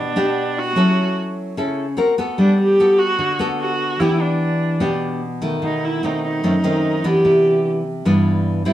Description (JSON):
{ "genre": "bossa nova", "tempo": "148 BPM", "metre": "4/4", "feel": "straight", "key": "E minor", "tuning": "A4 = 440 Hz", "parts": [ { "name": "dark viola", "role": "melody", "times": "0.0-7.7 s", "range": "D4 to G4", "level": "-19 LUFS", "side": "right 1 dB", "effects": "none" }, { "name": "nylon-string guitar", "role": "accompaniment", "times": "0.0-8.7 s", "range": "F#2 to A#4", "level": "-18 LUFS", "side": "equal", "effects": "none" } ], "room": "wet studio reverb, RT60 0.6 s", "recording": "band playing live in one room", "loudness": "-16 LUFS", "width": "side -12 dB against mid", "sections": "0.0-8.7 A section", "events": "none", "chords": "0.0 Em7 (rootless); 0.8 F#m7; 2.0 Am69; 2.4 Gmaj9; 4.0 Em7; 5.6 B7b9; 7.2 Cmaj9" }